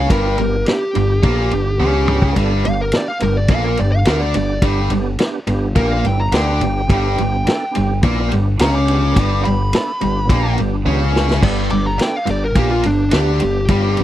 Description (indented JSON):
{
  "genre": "blues rock power trio and southern rock",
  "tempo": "106 BPM",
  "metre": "4/4",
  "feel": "straight",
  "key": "G mixolydian",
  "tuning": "A4 = 440 Hz",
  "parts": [
    { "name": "fuzz lead guitar", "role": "melody", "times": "0.0-14.0 s", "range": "D4 to D6", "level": "-21 LUFS", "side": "equal", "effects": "distortion" },
    { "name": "tight distorted guitar", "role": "riff", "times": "0.0-14.0 s", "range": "G2 to D4", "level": "-20 LUFS", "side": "equal", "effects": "distortion" },
    { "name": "growling picked electric bass", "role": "bass", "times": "0.0-14.0 s", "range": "G1 to D2", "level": "-18 LUFS", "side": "equal", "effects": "overdrive" },
    { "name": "overdriven tonewheel organ", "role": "sustained chords", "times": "0.1-14.0 s", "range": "B3 to A4", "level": "-25 LUFS", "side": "right 5 dB", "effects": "slow rotary speaker, chorus vibrato" },
    { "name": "vintage drum kit", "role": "drums", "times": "0.1-14.0 s", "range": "crash cymbal, kick drum, ride cymbal, snare drum, toms", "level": "-18 LUFS", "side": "equal", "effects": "none" }
  ],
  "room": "little or no reverb",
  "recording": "dry, close 1970s-style studio recording",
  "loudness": "-14 LUFS",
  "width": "side -13 dB against mid",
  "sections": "0.0-11.4 A section; 11.4-14.0 A section",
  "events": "lead electric guitar solo 0.0-14.0; drum fill 1.8-2.4, 10.9-11.4",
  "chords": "0.0 G"
}